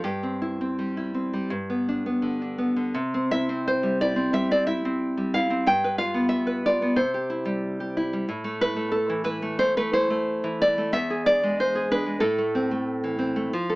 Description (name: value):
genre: romantic piece for solo classical guitar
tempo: 80-95 BPM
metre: 4/4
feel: rubato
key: C major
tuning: A4 = 439 Hz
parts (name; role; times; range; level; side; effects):
- nylon-string guitar; solo; 0.0-13.8 s; E2 to G5; -22 LUFS; equal; none
room: light reverb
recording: AM radio sound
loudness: -22 LUFS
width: side -22 dB against mid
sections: 0.0-3.0 A section; 3.0-13.8 B section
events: none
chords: 0.0 C/G; 1.5 G; 3.0 C; 5.7 G7; 7.0 C; 8.3 Am; 10.9 E7; 12.2 Am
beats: | 0.04 0.78 1.52 2.25 | 2.97 3.66 4.33 5.00 | 5.66 6.31 6.98 7.63 | 8.29 8.94 9.60 10.27 | 10.93 11.58 12.22 12.86 | 13.51